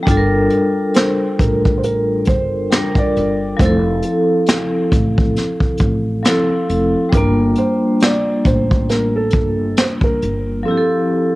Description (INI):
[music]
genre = lo-fi hip hop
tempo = 68 BPM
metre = 4/4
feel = swing 58% on 16ths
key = G dorian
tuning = A4 = 440 Hz
[part]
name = vibraphone with medium hard mallets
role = accompaniment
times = 0.0-11.4 s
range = F3 to Bb4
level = -17 LUFS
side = left 1 dB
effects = low-pass filter, cassette tape
[part]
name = upright bass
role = bass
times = 0.1-10.6 s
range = F1 to A1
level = -20 LUFS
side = equal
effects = none
[part]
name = vintage brush drum kit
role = drums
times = 0.1-10.5 s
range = hi-hat, kick drum, snare drum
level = -16 LUFS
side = equal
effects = cassette tape
[part]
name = felt-muted upright piano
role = melody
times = 1.0-11.4 s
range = A4 to D5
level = -22 LUFS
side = right 2 dB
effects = low-pass filter
[sound]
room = light reverb, studio ambience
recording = home recording on cassette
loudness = -14 LUFS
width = side -19 dB against mid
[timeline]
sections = 0.0-11.4 A section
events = none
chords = 0.1 Gm7; 3.6 Fmaj7; 7.1 Gm7; 10.7 Fmaj7